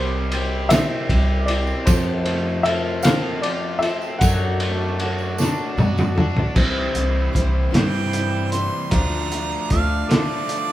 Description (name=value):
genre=folk rock and heartland rock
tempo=51 BPM (dotted quarters)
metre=6/8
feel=straight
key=C major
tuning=A4 = 440 Hz
part: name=warm baby grand piano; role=melody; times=0.0-5.7 s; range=C5 to F#5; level=-25 LUFS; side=left 1 dB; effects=none
part: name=picked old ladder-braced acoustic guitar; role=accompaniment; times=0.0-10.7 s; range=C3 to C5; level=-29 LUFS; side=left 3 dB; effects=none
part: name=accordion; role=sustained chords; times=0.0-10.7 s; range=A3 to D6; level=-36 LUFS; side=right 2 dB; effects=none
part: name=overdriven semi-hollow guitar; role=riff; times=0.0-10.7 s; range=F2 to G4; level=-27 LUFS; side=right 1 dB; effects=none
part: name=upright bass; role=bass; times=0.0-10.0 s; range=C2 to G2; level=-23 LUFS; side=equal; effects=none
part: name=cloth-damped thuddy drum kit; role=drums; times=0.3-10.7 s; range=crash cymbal, hi-hat, kick drum, ride cymbal, snare drum, toms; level=-21 LUFS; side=equal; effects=none
part: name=tambourine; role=percussion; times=0.7-6.1 s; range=none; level=-35 LUFS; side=right 9 dB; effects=none
part: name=warm harmonica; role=second line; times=7.7-10.7 s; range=D5 to C6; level=-25 LUFS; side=right 4 dB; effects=none
room=moderate large studio reverb, RT60 0.9 s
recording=band playing live in one room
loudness=-18 LUFS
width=side -14 dB against mid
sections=0.0-6.6 A section; 6.6-10.7 B section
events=drum fill 5.4-6.6; harmonica solo 6.6-10.7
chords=0.0 C; 1.9 F; 4.2 D/F#; 6.6 C; 8.9 Dm